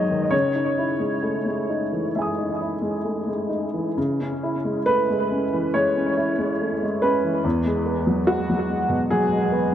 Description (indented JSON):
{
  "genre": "neoclassical minimalist piano",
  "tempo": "64-74 BPM",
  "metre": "4/4",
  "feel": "rubato",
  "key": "C# minor",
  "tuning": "A4 = 439 Hz",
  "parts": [
    { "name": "dark upright piano", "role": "solo", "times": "0.0-9.7 s", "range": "E2 to D#6", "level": "-20 LUFS", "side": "equal", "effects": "tape echo" }
  ],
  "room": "wet spring reverb, RT60 2.1 s",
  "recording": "echo-heavy mix, cassette tape",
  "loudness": "-20 LUFS",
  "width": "side -10 dB against mid",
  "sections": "0.0-4.0 A section; 4.0-9.7 B section",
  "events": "none",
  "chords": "0.3 C#madd9; 4.0 C#m; 7.4 Eadd9",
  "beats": "| 0.33 1.23 2.15 3.05 | 3.97 4.87 5.75 6.61 | 7.45 8.28 9.10"
}